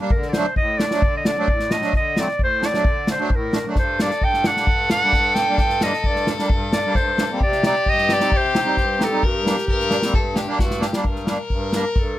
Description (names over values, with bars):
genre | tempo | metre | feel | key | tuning
klezmer | 132 BPM | 4/4 | straight | G harmonic minor | A4 = 440 Hz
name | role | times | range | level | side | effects
accordion | accompaniment | 0.0-12.2 s | G2 to Eb4 | -25 LUFS | right 1 dB | light tremolo tuning
clear clarinet | melody | 0.1-12.2 s | G4 to G5 | -21 LUFS | right 1 dB | plate reverb
unplugged drum kit | drums | 0.1-12.1 s | kick drum, snare drum | -22 LUFS | equal | none
rich violin | second line | 3.7-12.2 s | F#4 to Bb4 | -25 LUFS | left 3 dB | none
room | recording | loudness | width
light reverb | close, detailed microphones | -17 LUFS | side -14 dB against mid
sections
0.0-11.0 A section; 11.0-12.2 B section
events
drum fill 10.6-11.0; clarinet solo 11.0-12.2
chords
0.1 D; 3.8 Gm; 7.4 Cm; 9.2 Gm